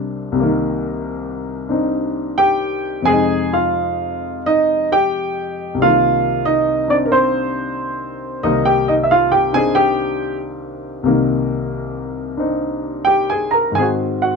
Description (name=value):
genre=solo jazz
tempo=90 BPM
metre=4/4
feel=swing 66% on 8ths, rubato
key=C minor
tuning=A4 = 440 Hz
part: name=warm baby grand piano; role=solo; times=0.0-14.4 s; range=C2 to Bb5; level=-16 LUFS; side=equal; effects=none
room=light reverb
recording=close, detailed microphones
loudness=-15 LUFS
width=side -4 dB against mid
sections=0.0-14.4 A section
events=none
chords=0.0 Cm7; 3.1 Fm7; 5.8 Cm7; 13.8 Ab7